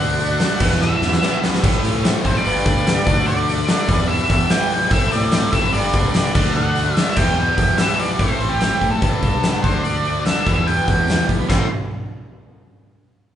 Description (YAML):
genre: classic rock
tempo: 146 BPM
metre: 4/4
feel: straight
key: A dorian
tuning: A4 = 445 Hz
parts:
  - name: octave-fuzz lead guitar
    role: melody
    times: 0.0-11.7 s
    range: G4 to C6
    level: -22 LUFS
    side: equal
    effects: distortion
  - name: picked swing-style acoustic guitar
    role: accompaniment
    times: 0.0-11.7 s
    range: A2 to D5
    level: -30 LUFS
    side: right 1 dB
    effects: none
  - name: tonewheel organ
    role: sustained chords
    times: 0.0-11.8 s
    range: A3 to E5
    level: -35 LUFS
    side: right 1 dB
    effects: none
  - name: biting overdriven guitar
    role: riff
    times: 0.0-11.7 s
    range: E2 to D4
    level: -24 LUFS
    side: left 6 dB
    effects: none
  - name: tight distorted guitar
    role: riff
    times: 0.0-11.7 s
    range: E2 to G4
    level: -27 LUFS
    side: right 7 dB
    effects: distortion
  - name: growling fingered electric bass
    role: bass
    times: 0.0-11.7 s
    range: F#1 to A2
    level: -24 LUFS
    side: equal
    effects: overdrive
  - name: tambourine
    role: percussion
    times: 0.0-11.7 s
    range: none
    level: -40 LUFS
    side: right 6 dB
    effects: none
  - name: huge arena drum kit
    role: drums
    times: 0.2-11.6 s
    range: china cymbal, crash cymbal, hi-hat, kick drum, snare drum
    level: -19 LUFS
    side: equal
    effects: none
room: moderate large studio reverb, RT60 1.3 s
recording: band playing live in one room, nothing above 10.6 kHz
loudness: -15 LUFS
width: side -10 dB against mid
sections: 0.0-8.2 A section; 8.2-11.5 B section; 11.5-13.1 C section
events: drum fill 0.8-1.6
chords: 0.0 D; 0.6 Em; 1.6 Am; 2.5 G; 3.1 D; 3.9 Em; 4.9 Am; 5.7 G; 6.3 D; 7.2 Em; 8.2 Am; 9.0 G; 9.6 D; 10.5 Em; 11.5 Am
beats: 0.40 0.81 1.22 | 1.63 2.04 2.45 2.86 | 3.27 3.68 4.09 4.50 | 4.91 5.32 5.73 6.14 | 6.55 6.96 7.38 7.79 | 8.20 8.61 9.02 9.43 | 9.85 10.26 10.67 11.08 | 11.49